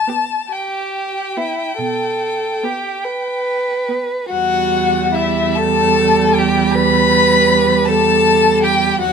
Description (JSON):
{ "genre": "classical, slow romantic movement for string quartet", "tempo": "46-54 BPM (dotted quarters)", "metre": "12/8", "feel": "rubato", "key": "E minor", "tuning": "A4 = 440 Hz", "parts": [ { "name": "rich violin", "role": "melody", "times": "0.0-9.1 s", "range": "E5 to B5", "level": "-18 LUFS", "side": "left 5 dB", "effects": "none" }, { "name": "rich cello", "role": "bass", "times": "0.0-9.1 s", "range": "E2 to B2", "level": "-20 LUFS", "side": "right 9 dB", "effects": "none" }, { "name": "rich violin", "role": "second line", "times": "0.1-9.1 s", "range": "E4 to B4", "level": "-17 LUFS", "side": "right 1 dB", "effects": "none" }, { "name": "warm viola", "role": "accompaniment", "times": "0.1-9.1 s", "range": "F#3 to B3", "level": "-20 LUFS", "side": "right 6 dB", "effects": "none" } ], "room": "light reverb", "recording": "minimal, uncompressed stereo recording", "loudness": "-13 LUFS", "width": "side -6 dB against mid", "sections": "0.0-4.3 A section; 4.3-9.1 A section", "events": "none", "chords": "0.0 Em (rootless); 4.3 Em" }